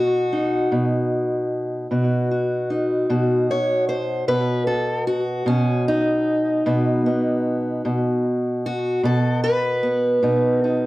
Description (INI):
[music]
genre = acoustic country blues, solo or duo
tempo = 50 BPM (dotted quarters)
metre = 12/8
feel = straight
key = unclear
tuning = A4 = 440 Hz
[part]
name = fingerpicked steel-string acoustic guitar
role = solo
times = 0.0-10.9 s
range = B2 to C#5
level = -18 LUFS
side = equal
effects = slapback echo
[sound]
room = moderate booth ambience, RT60 0.2 s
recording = worn, warbling old tape, cassette tape, warbly pitch drift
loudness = -18 LUFS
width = side -18 dB against mid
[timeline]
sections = 0.0-10.9 A section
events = steel-string acoustic guitar solo 0.0-10.9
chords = 0.0 B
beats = 0.72 1.91 3.10 | 4.28 5.47 6.66 7.85 | 9.04 10.23